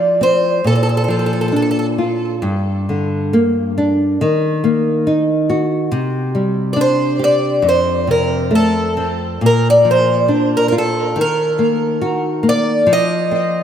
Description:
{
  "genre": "fado-style ballad",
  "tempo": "69 BPM",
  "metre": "2/4",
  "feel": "rubato",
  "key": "Bb major",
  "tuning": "A4 = 439 Hz",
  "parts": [
    { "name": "picked twelve-string acoustic guitar", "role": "melody", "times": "0.0-1.9, 6.7-13.6 s", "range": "A4 to Eb5", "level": "-15 LUFS", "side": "right 1 dB", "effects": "diffuse ambient delay" },
    { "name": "nylon-string guitar", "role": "accompaniment", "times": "0.0-13.6 s", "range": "F2 to G4", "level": "-16 LUFS", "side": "left 1 dB", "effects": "wide subtle chorus" }
  ],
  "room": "wet plate reverb, RT60 3.0 s",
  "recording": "dreamy mix soaked in reverb",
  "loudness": "-13 LUFS",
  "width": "side -9 dB against mid",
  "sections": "0.0-13.6 A section",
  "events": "none",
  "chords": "0.0 F5; 0.6 Bb; 2.4 Gm; 4.2 Ebm; 5.9 Csus2; 7.6 F; 9.4 Bb; 11.2 Ebm; 12.9 F5"
}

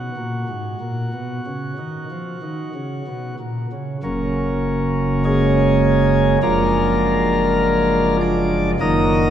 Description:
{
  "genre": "classical, chorale-style piece for pipe organ",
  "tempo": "46-52 BPM",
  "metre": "4/4",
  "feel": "rubato",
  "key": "F# major",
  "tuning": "A4 = 440 Hz",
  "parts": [
    { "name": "chamber organ, principal chorus", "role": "solo", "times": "0.0-9.3 s", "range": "F#1 to D#5", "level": "-17 LUFS", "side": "equal", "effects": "none" }
  ],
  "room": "wet church reverb, RT60 3.2 s",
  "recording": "heard from further back in the room",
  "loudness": "-17 LUFS",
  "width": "side -10 dB against mid",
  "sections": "0.0-4.0 A section; 4.0-9.3 B section",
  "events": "none",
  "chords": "0.0 F#; 6.4 A#7/F#; 8.8 D#m/F#"
}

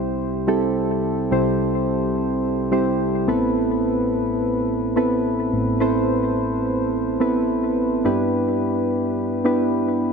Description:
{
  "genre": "pop",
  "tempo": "107 BPM",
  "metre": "4/4",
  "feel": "straight",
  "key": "unclear",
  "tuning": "A4 = 438 Hz",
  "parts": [
    { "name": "soft electric-piano-like synth keys", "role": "solo", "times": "0.0-10.1 s", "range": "A1 to C5", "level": "-19 LUFS", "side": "equal", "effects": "chorus, ping-pong delay" }
  ],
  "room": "light reverb",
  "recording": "none",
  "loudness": "-19 LUFS",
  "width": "side -5 dB against mid",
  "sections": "0.0-10.1 A section",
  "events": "none",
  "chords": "0.0 C; 3.3 Amadd9; 8.0 G6"
}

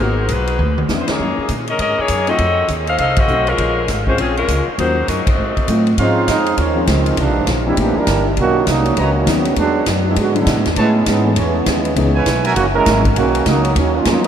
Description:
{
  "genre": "jazz, big band swing",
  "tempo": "201 BPM",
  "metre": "4/4",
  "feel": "swing 63% on 8ths",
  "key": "Bb minor",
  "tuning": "A4 = 443 Hz",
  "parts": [
    { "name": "bright saxophone section", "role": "melody", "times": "0.0-5.9 s", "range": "F3 to F5", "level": "-19 LUFS", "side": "left 2 dB", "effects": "none" },
    { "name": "warm grand piano", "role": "accompaniment", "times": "0.0-14.3 s", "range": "D3 to Ab4", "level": "-24 LUFS", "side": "left 4 dB", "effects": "none" },
    { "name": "upright bass", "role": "bass", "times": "0.0-14.3 s", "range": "Gb1 to Bb2", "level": "-19 LUFS", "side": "equal", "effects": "none" },
    { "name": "swinging big-band drum kit", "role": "drums", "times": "0.3-14.3 s", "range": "hi-hat, kick drum, ride cymbal, snare drum, toms", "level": "-22 LUFS", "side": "equal", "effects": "none" },
    { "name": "mellow trombone section", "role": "second line", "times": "6.0-14.3 s", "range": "C#3 to Bb4", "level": "-17 LUFS", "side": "right 4 dB", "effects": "none" },
    { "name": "mellow trumpet section", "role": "stabs", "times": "6.0-6.8, 9.0-14.3 s", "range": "Eb4 to Bb5", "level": "-24 LUFS", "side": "right 2 dB", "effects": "none" }
  ],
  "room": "wet huge ambient reverb, RT60 8.2 s",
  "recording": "in a vast, echoing space",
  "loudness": "-13 LUFS",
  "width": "side -9 dB against mid",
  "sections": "0.0-6.0 A section; 6.0-14.3 B section",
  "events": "drum fill 0.6; band accent 1.0, 3.1, 5.2; trombone section solo 6.0-14.3",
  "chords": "0.0 Abm7; 0.6 E7(no3)/D; 1.2 Gb69; 2.4 F7b9; 3.6 Bbm9; 4.8 Ebm7; 5.4 Ab7b9; 6.0 Dbmaj9; 7.2 C9; 8.4 Cbmaj9; 9.6 E9; 10.8 Amaj9; 12.0 Dbm7; 12.6 Gb9; 13.2 Cbmaj9"
}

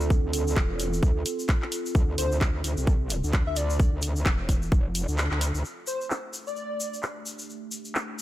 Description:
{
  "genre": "bass house",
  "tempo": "130 BPM",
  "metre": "4/4",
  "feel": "swing 58% on 16ths",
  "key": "A minor",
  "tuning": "A4 = 440 Hz",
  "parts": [
    { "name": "metallic wobble bass", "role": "bass", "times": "0.0-5.6 s", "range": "E1 to D2", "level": "-28 LUFS", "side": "equal", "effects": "chorus, overdrive, sidechain pumping" },
    { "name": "tube shaker", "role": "percussion", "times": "0.0-8.2 s", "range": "none", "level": "-36 LUFS", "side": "left 2 dB", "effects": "none" },
    { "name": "warbly tape-like pad", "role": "texture", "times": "0.0-8.2 s", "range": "A3 to B4", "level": "-36 LUFS", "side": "right 3 dB", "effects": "chorus, built-in reverb, sidechain pumping" },
    { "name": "electronic kick drum", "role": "drums", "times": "0.1-4.8 s", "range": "none", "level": "-23 LUFS", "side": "equal", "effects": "none" },
    { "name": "garage drum kit", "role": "drums", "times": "0.3-8.1 s", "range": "handclaps, hi-hat", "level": "-32 LUFS", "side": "equal", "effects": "low-pass filter on snare, low-pass filter on hats" },
    { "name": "airy dreamy lead", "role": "melody", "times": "2.2-6.9 s", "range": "C5 to E5", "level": "-33 LUFS", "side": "left 2 dB", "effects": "chorus, digital delay" }
  ],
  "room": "little or no reverb",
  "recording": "none",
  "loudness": "-24 LUFS",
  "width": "side -14 dB against mid",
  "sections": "0.0-5.6 A section; 5.6-8.2 B section",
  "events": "kick drops out 5.2-5.6; band accent 5.2; filter sweep on drum 5.6-8.2",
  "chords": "0.0 Dm; 5.6 Am7"
}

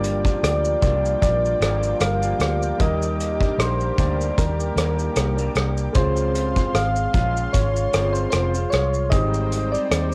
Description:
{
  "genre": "indie pop, bedroom pop",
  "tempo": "76 BPM",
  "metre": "4/4",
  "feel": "swing 55% on 16ths",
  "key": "Eb major",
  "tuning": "A4 = 443 Hz",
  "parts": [
    { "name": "soft electric-piano-like synth keys", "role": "melody", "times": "0.0-10.1 s", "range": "Bb4 to F5", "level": "-27 LUFS", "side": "equal", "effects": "lush chorus, cassette tape, analog delay" },
    { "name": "electric guitar through a small old amp", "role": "accompaniment", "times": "0.0-10.1 s", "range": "G2 to F4", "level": "-31 LUFS", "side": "equal", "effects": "subtle chorus, warbly pitch drift, cassette tape" },
    { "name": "warm upright piano", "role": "accompaniment", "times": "0.0-10.1 s", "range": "G3 to C5", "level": "-34 LUFS", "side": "equal", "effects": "cassette tape" },
    { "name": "lush unison pad", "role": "sustained chords", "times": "0.0-10.1 s", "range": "Eb4 to D6", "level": "-36 LUFS", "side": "equal", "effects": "chorus, cassette tape" },
    { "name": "vintage muted fingered electric bass", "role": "bass", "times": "0.0-10.1 s", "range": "F1 to Eb2", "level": "-26 LUFS", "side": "equal", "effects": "none" },
    { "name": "loose indie drum kit", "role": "drums", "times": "0.0-10.1 s", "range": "hi-hat, kick drum, rim click, shaker", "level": "-26 LUFS", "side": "equal", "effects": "cassette tape" }
  ],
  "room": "light reverb",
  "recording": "home recording on cassette",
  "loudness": "-21 LUFS",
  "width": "mono",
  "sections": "0.0-10.1 A section",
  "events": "none",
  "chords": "0.0 Gm7; 2.8 Ebmaj7; 6.0 Dbmaj7; 9.1 Abmaj7"
}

